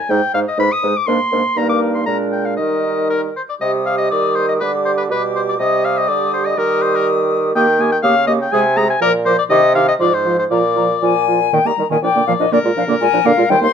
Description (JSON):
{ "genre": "quick classical-period movement for wind quintet", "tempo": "122 BPM", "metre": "2/4", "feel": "straight", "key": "Eb major, C minor from 3.6 s", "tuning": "A4 = 440 Hz", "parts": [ { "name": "clear oboe", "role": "second line", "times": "0.0-13.7 s", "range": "Bb4 to Eb6", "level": "-18 LUFS", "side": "left 4 dB", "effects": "none" }, { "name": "silver concert flute", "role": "melody", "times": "0.1-13.7 s", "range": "Bb4 to Eb6", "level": "-20 LUFS", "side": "left 7 dB", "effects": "none" }, { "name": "mellow French horn", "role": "accompaniment", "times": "0.1-13.7 s", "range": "Bb2 to Bb3", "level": "-24 LUFS", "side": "equal", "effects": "none" }, { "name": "warm clarinet", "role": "accompaniment", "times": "0.1-13.7 s", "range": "Eb3 to Bb4", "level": "-22 LUFS", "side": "right 10 dB", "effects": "none" }, { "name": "warm bassoon", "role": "bass", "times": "0.1-13.7 s", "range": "Eb2 to Eb3", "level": "-19 LUFS", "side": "right 2 dB", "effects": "none" } ], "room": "moderate studio reverb, RT60 0.8 s", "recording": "minimal, uncompressed stereo recording", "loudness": "-13 LUFS", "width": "side -7 dB against mid", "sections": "0.0-3.6 A section; 3.6-11.5 B section; 11.5-13.7 C section", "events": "none", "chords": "0.1 Ab5; 1.1 Bb7/Ab; 1.6 Eb/G; 2.1 Bb7; 2.6 Eb; 3.6 Cm; 4.6 G/D; 5.6 Cm; 6.6 Eb; 8.0 Eb7/Db; 8.5 Ab/C; 9.0 Bb; 9.5 Cm; 10.0 Fm/Ab; 10.5 Bb; 11.5 Eb; 12.0 Bb; 12.5 Bb7" }